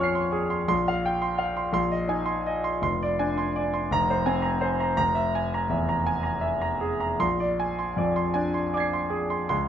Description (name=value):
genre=classical, impressionist solo piano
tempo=50-59 BPM (dotted quarters)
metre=6/8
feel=rubato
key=unclear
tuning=A4 = 441 Hz
part: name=clear concert grand piano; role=solo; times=0.0-9.7 s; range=F1 to C7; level=-23 LUFS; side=equal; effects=none
room=moderate recital hall reverb, RT60 1.5 s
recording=close, detailed microphones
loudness=-23 LUFS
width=side -9 dB against mid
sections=0.0-9.7 A section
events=none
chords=0.0 Bbm9; 0.7 Gm7/Bb; 1.7 Ab/Bb; 2.8 Fm6; 3.9 Ab69/F; 5.0 Fmadd11; 7.2 Bb9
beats=| 0.70 1.75 | 2.83 3.90 | 4.98 6.07 | 7.19 8.35 | 9.51